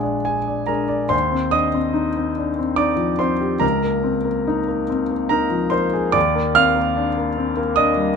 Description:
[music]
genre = classical, impressionist solo piano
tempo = 68-75 BPM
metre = 3/4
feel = rubato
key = unclear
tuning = A4 = 440 Hz
[part]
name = clear concert grand piano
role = solo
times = 0.0-8.2 s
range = Bb1 to F6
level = -17 LUFS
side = equal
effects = none
[sound]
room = light reverb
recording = close, detailed microphones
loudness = -17 LUFS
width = side -6 dB against mid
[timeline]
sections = 0.0-1.1 A section; 1.1-8.2 B section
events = none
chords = 0.0 Bbaug7; 1.1 Ebsus2; 3.6 Db69; 6.2 Ebmaj7(no3)

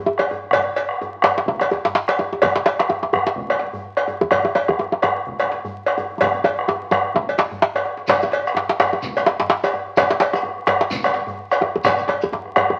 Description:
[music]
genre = west african traditional, West African drum ensemble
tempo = 127 BPM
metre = 4/4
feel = swing 57% on 16ths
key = none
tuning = none
[part]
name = djembe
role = percussion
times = 0.1-12.8 s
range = none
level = -22 LUFS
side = equal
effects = none
[part]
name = bombo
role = percussion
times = 0.2-12.7 s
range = none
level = -25 LUFS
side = equal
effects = none
[part]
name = cowbell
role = percussion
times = 0.2-12.7 s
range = none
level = -24 LUFS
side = equal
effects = none
[part]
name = djembe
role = percussion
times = 0.2-12.8 s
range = none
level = -37 LUFS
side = equal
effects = none
[part]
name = shekere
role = percussion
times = 8.1-12.3 s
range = none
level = -34 LUFS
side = equal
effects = none
[sound]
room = moderate studio reverb, RT60 0.9 s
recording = very old 78 rpm record, vinyl crackle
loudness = -20 LUFS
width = mono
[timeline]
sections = 0.0-8.1 A section; 8.1-12.8 B section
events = drum fill 6.2-8.1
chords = none

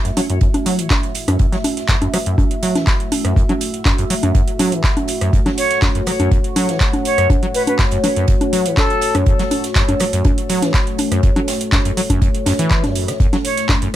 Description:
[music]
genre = acid house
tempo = 122 BPM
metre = 4/4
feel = straight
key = F# minor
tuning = A4 = 439 Hz
[part]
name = dark analog pad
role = sustained chords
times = 0.0-14.0 s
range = A3 to E5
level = -23 LUFS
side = left 2 dB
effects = chorus, phaser, sidechain pumping
[part]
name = acid bass, saw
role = riff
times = 0.0-13.9 s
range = F#2 to F#3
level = -21 LUFS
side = equal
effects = overdrive, lush chorus, sidechain pumping
[part]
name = booming analog drum machine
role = drums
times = 0.1-13.9 s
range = congas, handclaps, hi-hat, rim click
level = -20 LUFS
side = right 1 dB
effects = overdrive
[part]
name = open jazz drum kit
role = drums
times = 0.1-13.8 s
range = hi-hat, snare drum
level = -32 LUFS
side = right 4 dB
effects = high-pass filter on hats, high-pass filter on snare, high-pass filter on room
[part]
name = electronic kick drum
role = drums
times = 0.4-13.8 s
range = none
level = -16 LUFS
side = equal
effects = overdrive
[part]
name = silver concert flute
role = melody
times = 5.6-9.1, 13.4-13.7 s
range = A4 to C#5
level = -20 LUFS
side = right 1 dB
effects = ping-pong delay
[sound]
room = light reverb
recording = none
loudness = -14 LUFS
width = side -12 dB against mid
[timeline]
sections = 0.0-14.0 A section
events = none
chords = 0.0 F#m7

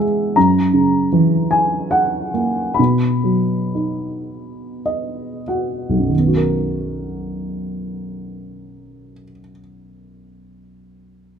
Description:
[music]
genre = classical, lyrical solo piano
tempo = 29-54 BPM (dotted quarters)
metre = 6/8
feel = rubato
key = B major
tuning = A4 = 440 Hz
[part]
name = dark upright piano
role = solo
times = 0.0-11.4 s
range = B1 to B5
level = -16 LUFS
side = equal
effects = none
[sound]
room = light reverb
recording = close, detailed microphones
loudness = -16 LUFS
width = side -7 dB against mid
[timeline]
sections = 0.0-6.1 A section; 6.1-10.1 B section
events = slowing down 0.4-6.1; upright piano fill 4.3-6.1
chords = 0.4 F#7; 2.8 B; 6.1 Bmaj7

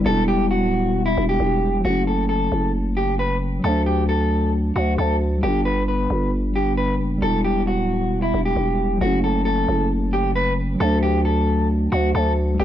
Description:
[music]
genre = hip hop, trap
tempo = 134 BPM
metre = 4/4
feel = half-time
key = F# phrygian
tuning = A4 = 440 Hz
[part]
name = mellow tine electric piano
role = accompaniment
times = 0.0-12.6 s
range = F#3 to E4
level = -23 LUFS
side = left 1 dB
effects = slow stereo tremolo
[part]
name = growling 808-style bass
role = bass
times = 0.0-12.6 s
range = D1 to D2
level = -22 LUFS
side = equal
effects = none
[part]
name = electric guitar at the edge of break-up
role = melody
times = 0.1-12.6 s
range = E4 to B4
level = -23 LUFS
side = equal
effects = vibrato effect, tape echo
[sound]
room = little or no reverb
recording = dry, gritty hardware recording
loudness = -18 LUFS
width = side -11 dB against mid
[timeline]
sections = 0.0-1.8 A section; 1.8-9.0 B section; 9.0-12.6 C section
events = none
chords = 0.1 Em; 1.8 F#m; 3.6 D; 5.4 G; 7.2 Em; 9.0 F#m; 10.8 D

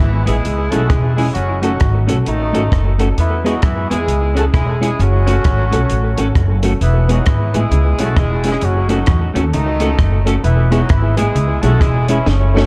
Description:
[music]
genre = ska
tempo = 132 BPM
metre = 4/4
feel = swing 61% on 8ths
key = unclear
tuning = A4 = 439 Hz
[part]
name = warm horn section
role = melody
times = 0.0-12.7 s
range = C#3 to A4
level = -23 LUFS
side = equal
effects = tape echo
[part]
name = upright bass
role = bass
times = 0.0-12.7 s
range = E1 to F#2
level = -18 LUFS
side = equal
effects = none
[part]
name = compact cocktail drum kit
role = drums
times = 0.0-12.7 s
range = hi-hat, kick drum, rim click, snare drum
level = -20 LUFS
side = equal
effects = none
[part]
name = semi-hollow electric guitar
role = accompaniment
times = 0.3-12.6 s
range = G#3 to A4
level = -25 LUFS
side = equal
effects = spring reverb, tape echo
[part]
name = honky-tonk upright piano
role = stabs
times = 0.3-12.7 s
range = B3 to A4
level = -26 LUFS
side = equal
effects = tape echo
[part]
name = mellow electric guitar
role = riff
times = 6.8-12.4 s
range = E2 to E3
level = -26 LUFS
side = equal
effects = none
[sound]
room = little or no reverb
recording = dark, warm production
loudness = -15 LUFS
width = mono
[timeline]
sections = 0.0-12.7 A section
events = drum fill 12.3-12.7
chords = 0.4 C#m; 1.4 F#m; 3.2 E; 4.1 C#m; 5.0 F#m; 6.8 E; 7.7 C#m; 8.6 F#m; 10.4 E; 11.4 C#m

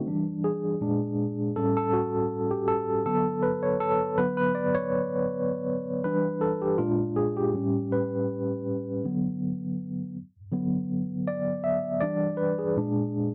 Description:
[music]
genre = soul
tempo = 80 BPM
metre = 4/4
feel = swing 54% on 16ths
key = unclear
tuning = A4 = 440 Hz
[part]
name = mellow tine electric piano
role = solo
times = 0.0-13.3 s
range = A2 to E5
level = -28 LUFS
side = equal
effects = medium tremolo
[sound]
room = light reverb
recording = dry, close 1970s-style studio recording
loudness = -28 LUFS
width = mono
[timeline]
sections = 0.1-13.3 A section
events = tine electric piano solo 0.1-13.3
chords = 0.1 Em7; 0.8 A#7; 1.6 A7; 3.1 D6; 6.0 Em7; 6.8 A#7; 7.5 A7; 9.0 D6; 12.0 Em7; 12.8 A#7

